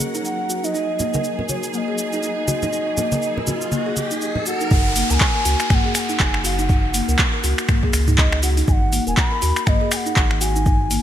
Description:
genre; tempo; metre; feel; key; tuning
afro house; 121 BPM; 4/4; swing 58% on 16ths; unclear; A4 = 440 Hz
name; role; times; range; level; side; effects
dark studio string section; sustained chords; 0.0-4.7 s; Gb3 to Gb5; -30 LUFS; right 1 dB; sidechain pumping
afro-pop drum kit; drums; 0.0-11.0 s; cabasa, finger snaps, handclaps, hi-hat, toms; -23 LUFS; equal; none
congas; percussion; 0.0-4.4 s; none; -27 LUFS; right 1 dB; none
kalimba; arpeggios; 0.1-11.0 s; Bb3 to Bb4; -25 LUFS; left 1 dB; sidechain pumping, digital delay
breathy bass bansuri; melody; 0.2-11.0 s; Db5 to Cb6; -25 LUFS; equal; digital delay
riser and downlifter; sound effects; 2.1-8.7 s; none; -28 LUFS; equal; none
warm sub bass; bass; 4.7-11.0 s; Eb1 to Eb2; -21 LUFS; equal; sidechain pumping
electronic kick drum; drums; 4.7-10.8 s; none; -18 LUFS; equal; none
room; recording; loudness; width
light reverb, small room ambience; bright 1980s-style digital production; -17 LUFS; side -11 dB against mid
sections
0.0-4.7 A section; 4.7-11.0 B section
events
riser 2.1-4.7; drop 4.7-11.0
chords
0.0 Ebm7; 0.7 Gb69; 4.7 Gb; 8.7 Ebm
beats
0.25 | 0.74 1.24 1.74 2.23 | 2.73 3.22 3.72 4.22 | 4.71 5.21 5.70 6.20 | 6.70 7.19 7.69 8.18 | 8.68 9.17 9.67 10.17 | 10.66

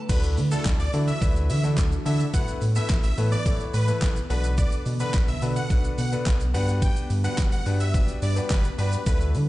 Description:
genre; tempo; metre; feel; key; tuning
dance-pop; 107 BPM; 4/4; straight; D major; A4 = 440 Hz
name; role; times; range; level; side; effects
ethereal airy pad; sustained chords; 0.0-9.5 s; D3 to B4; -34 LUFS; right 2 dB; ensemble chorus, built-in reverb, sidechain pumping
supersaw chords; melody; 0.1-9.2 s; A4 to G5; -33 LUFS; equal; digital delay
clear concert grand piano; accompaniment; 0.1-9.4 s; A3 to C#5; -32 LUFS; left 4 dB; sidechain pumping
round analog bass; bass; 0.1-9.5 s; G1 to D3; -24 LUFS; equal; sidechain pumping
pop drum kit; drums; 0.1-9.5 s; crash cymbal, handclaps, hi-hat, kick drum, shaker, snare drum; -25 LUFS; equal; overdrive
room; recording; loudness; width
digital ambience; played on a big sound system in a bare room, stone room reverb, nothing above 10.3 kHz; -21 LUFS; side -17 dB against mid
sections
0.1-9.5 A section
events
drop 0.1-9.5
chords
0.1 Dadd9; 2.3 Asus2; 4.3 Bm7; 6.5 Gmaj7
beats
| 0.09 0.66 1.22 1.78 | 2.34 2.90 3.46 4.02 | 4.58 5.14 5.70 6.26 | 6.82 7.38 7.94 8.51 | 9.07

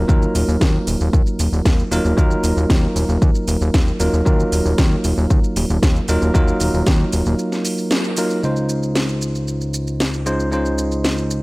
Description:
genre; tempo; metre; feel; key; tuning
nu-disco, nu disco; 115 BPM; 4/4; straight; unclear; A4 = 439 Hz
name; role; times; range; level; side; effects
bell-like tine electric piano; accompaniment; 0.0-11.4 s; Gb3 to C5; -21 LUFS; right 1 dB; low-pass filter, tape echo
fat analog bass; bass; 0.0-11.4 s; Eb1 to Eb2; -20 LUFS; equal; none
electronic kick drum; drums; 0.1-7.0 s; none; -16 LUFS; equal; none
house drum kit; drums; 0.1-11.4 s; hi-hat, shaker, snare drum; -24 LUFS; equal; none
room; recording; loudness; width
digital ambience; dry, gritty hardware recording, transformer saturation; -15 LUFS; side -23 dB against mid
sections
0.0-8.4 A section; 8.4-11.4 B section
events
break 7.4-8.4; band accent 7.9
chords
0.0 Ebmadd9; 8.4 Dbmaj7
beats
| 0.09 0.61 1.13 1.66 | 2.18 2.70 3.22 3.74 | 4.26 4.79 5.31 5.83 | 6.35 6.87 7.39 7.92 | 8.44 8.96 9.48 10.00 | 10.53 11.05

